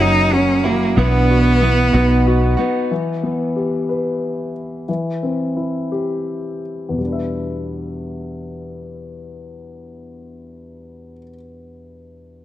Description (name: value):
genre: six-eight pop ballad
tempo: 54-62 BPM (dotted quarters)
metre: 6/8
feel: straight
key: E minor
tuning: A4 = 441 Hz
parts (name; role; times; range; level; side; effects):
- clear cello; melody; 0.0-2.6 s; A#3 to D#4; -18 LUFS; right 1 dB; ping-pong delay
- dark French horn section; second line; 0.0-2.6 s; C#4 to E4; -25 LUFS; right 5 dB; none
- warm grand piano; accompaniment; 0.0-12.4 s; E2 to E5; -22 LUFS; left 2 dB; none
- direct-recorded clean electric guitar; arpeggios; 0.0-2.9 s; B2 to F#4; -24 LUFS; right 5 dB; ping-pong delay
- vintage muted fingered electric bass; bass; 0.0-2.5 s; F#1 to B1; -17 LUFS; equal; none
room: light reverb, studio reverb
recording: none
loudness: -16 LUFS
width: side -13 dB against mid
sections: 0.0-2.9 A section; 2.9-7.0 B section; 7.0-11.5 C section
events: slowing down 2.9-7.0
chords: 0.0 F#7; 1.0 Bsus4; 1.9 B; 2.9 Em; 4.9 C/E; 7.0 Em7